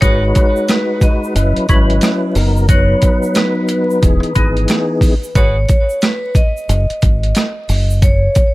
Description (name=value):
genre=hip hop, boom-bap hip-hop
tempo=90 BPM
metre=4/4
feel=swing 63% on 16ths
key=G# minor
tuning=A4 = 440 Hz
part: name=vibraphone with hard mallets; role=melody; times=0.0-8.5 s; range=B4 to D#5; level=-20 LUFS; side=equal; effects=high-pass filter, low-pass filter, digital delay
part: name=percussive tonewheel organ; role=accompaniment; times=0.0-5.2 s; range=E3 to B4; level=-17 LUFS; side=left 1 dB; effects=chorus vibrato, slow rotary speaker, cassette tape, high-pass filter, low-pass filter
part: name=warm saxophone section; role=stabs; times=0.0-0.2, 5.4-5.6 s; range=F#4 to B4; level=-27 LUFS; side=right 3 dB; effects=high-pass filter, low-pass filter, digital delay
part: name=deep dub fingered electric bass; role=bass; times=0.0-8.3 s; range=E1 to G#1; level=-14 LUFS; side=equal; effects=none
part: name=boom bap sampler-style drum kit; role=drums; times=0.0-8.5 s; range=hi-hat, kick drum, rim click, snare drum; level=-13 LUFS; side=equal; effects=overdrive
part: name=egg shaker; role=percussion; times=0.0-8.5 s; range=none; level=-36 LUFS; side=right 6 dB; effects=none
room=studio reverb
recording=vinyl crackle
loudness=-11 LUFS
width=side -19 dB against mid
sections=0.0-8.5 A section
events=none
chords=0.0 G#m7; 1.4 F#7sus4; 2.4 Bmaj7/F#; 4.0 Emaj7; 5.4 G#madd11; 6.7 D#madd11/F#; 7.7 F#5